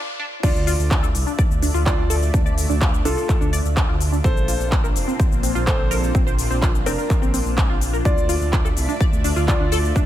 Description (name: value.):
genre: progressive house.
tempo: 126 BPM.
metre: 4/4.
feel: straight.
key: D minor.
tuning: A4 = 440 Hz.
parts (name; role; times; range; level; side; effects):
tight sequenced synth; arpeggios; 0.2-10.0 s; C4 to D5; -28 LUFS; equal; chorus, sidechain pumping, digital delay.
warm grand piano; melody; 0.4-9.9 s; D4 to D5; -28 LUFS; equal; sidechain pumping, digital delay.
soft synth bell; second line; 0.4-9.9 s; A4 to D5; -34 LUFS; left 1 dB; none.
lush unison pad; sustained chords; 0.4-10.1 s; A3 to E5; -30 LUFS; equal; chorus, phaser, sidechain pumping.
dark detuned saw bass; bass; 0.4-10.1 s; F1 to D2; -23 LUFS; equal; sidechain pumping, high-pass filter.
big-room dance drum kit; drums; 0.4-10.1 s; crash cymbal, handclaps, hi-hat, shaker; -28 LUFS; left 1 dB; overdrive, studio reverb.
electronic kick drum; drums; 0.4-10.1 s; none; -19 LUFS; equal; overdrive, high-pass filter on kick, studio reverb.
room: digital ambience.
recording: high-pass filter.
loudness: -17 LUFS.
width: side -12 dB against mid.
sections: 0.4-10.1 A section.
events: break 0.0-0.4; drop 0.4-10.1.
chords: 0.4 Dmadd9; 4.2 Bbadd9; 8.1 Dmadd9.